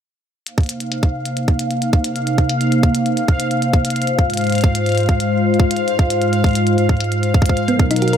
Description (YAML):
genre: IDM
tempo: 133 BPM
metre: 4/4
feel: straight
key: C minor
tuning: A4 = 440 Hz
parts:
  - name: hollow soft pad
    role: sustained chords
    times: 0.5-8.2 s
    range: Ab2 to C5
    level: -18 LUFS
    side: left 1 dB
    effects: chorus
  - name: electronic hi-hat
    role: drums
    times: 0.5-8.2 s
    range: none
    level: -28 LUFS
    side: left 3 dB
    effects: none
  - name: bubbling stepped-filter texture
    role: texture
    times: 0.7-8.2 s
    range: F5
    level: -23 LUFS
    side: right 1 dB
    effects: chorus, built-in reverb
  - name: electronic kick drum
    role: drums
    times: 0.6-7.9 s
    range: none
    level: -14 LUFS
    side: equal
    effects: none
  - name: thumb-piano-like synth pluck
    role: arpeggios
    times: 7.7-8.2 s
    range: B3 to A#4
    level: -17 LUFS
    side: right 1 dB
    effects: chorus
room: light reverb, digital ambience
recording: none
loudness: -15 LUFS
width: side -9 dB against mid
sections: 0.5-8.2 A section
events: none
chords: 0.5 Cm7; 4.1 Ab6